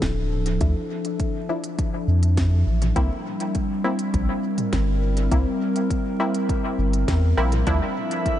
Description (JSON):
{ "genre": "ambient dub", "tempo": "102 BPM", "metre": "4/4", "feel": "straight", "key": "unclear", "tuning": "A4 = 440 Hz", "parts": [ { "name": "warbly tape-like pad", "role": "sustained chords", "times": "0.0-8.4 s", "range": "F3 to E5", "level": "-26 LUFS", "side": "equal", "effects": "chorus, built-in reverb" }, { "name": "warm sub bass", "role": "bass", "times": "0.0-7.8 s", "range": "D1 to F2", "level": "-20 LUFS", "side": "equal", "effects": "none" }, { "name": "electronic kick drum", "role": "drums", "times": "0.0-8.4 s", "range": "none", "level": "-26 LUFS", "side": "equal", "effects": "none" }, { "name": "organic electronic drum kit", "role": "drums", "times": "0.0-8.4 s", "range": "hi-hat, snare drum, toms", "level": "-34 LUFS", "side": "equal", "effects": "dub echo" }, { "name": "filtered dub chord stab", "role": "stabs", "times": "0.6-7.9 s", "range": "F3 to E4", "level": "-29 LUFS", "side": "left 1 dB", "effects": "chorus, dub echo" }, { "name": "drifting glass-harmonics texture", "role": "texture", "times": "7.9-8.4 s", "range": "E4 to E5", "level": "-28 LUFS", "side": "right 1 dB", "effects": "chorus, built-in reverb" } ], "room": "light reverb, digital ambience", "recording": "vinyl crackle, nothing above 10.3 kHz", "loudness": "-20 LUFS", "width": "side -12 dB against mid", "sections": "0.0-8.4 A section", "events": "none", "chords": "0.0 Dmadd9; 3.0 C7; 7.7 Dmadd9" }